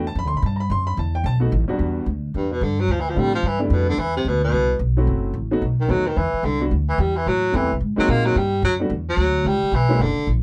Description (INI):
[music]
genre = jazz, small-group swing and bop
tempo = 219 BPM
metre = 4/4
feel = swing 62% on 8ths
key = unclear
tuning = A4 = 440 Hz
[part]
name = warm baby grand piano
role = accompaniment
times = 0.0-10.0 s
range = E2 to C6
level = -27 LUFS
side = equal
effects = none
[part]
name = upright bass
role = bass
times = 0.0-10.4 s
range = F#1 to Bb2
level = -24 LUFS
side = equal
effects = none
[part]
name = warm baritone saxophone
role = melody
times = 2.4-10.3 s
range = G2 to Bb3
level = -24 LUFS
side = equal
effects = none
[sound]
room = moderate booth ambience, RT60 0.3 s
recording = heard from further back in the room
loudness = -21 LUFS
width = mono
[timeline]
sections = 0.0-1.8 A section; 1.8-10.4 B section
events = none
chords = 0.0 Gmaj9; 0.7 Emadd9; 1.2 B7; 1.8 Em7; 2.9 Dm7; 3.4 G7; 4.0 Cmaj7; 5.1 F#m7b5; 5.6 B7; 6.2 E7(no3); 7.3 Am7; 7.8 Ab9; 8.4 Gmaj7(no3); 9.5 C#m7b5